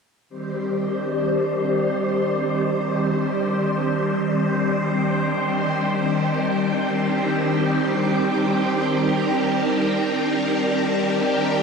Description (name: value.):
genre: ambient.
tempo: free time.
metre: none.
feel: none.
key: C minor.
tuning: A4 = 440 Hz.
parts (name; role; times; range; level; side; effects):
phased string machine; sustained chords; 0.3-11.6 s; Eb3 to C5; -20 LUFS; equal; ensemble chorus, phaser.
wind-like tuned noise texture; texture; 0.5-11.6 s; D4 to G5; -28 LUFS; equal; built-in reverb.
room: wet huge ambient reverb, RT60 8.3 s.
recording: none.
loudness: -19 LUFS.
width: side -5 dB against mid.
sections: 0.3-11.6 A section.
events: none.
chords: 0.3 Cm.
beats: free time.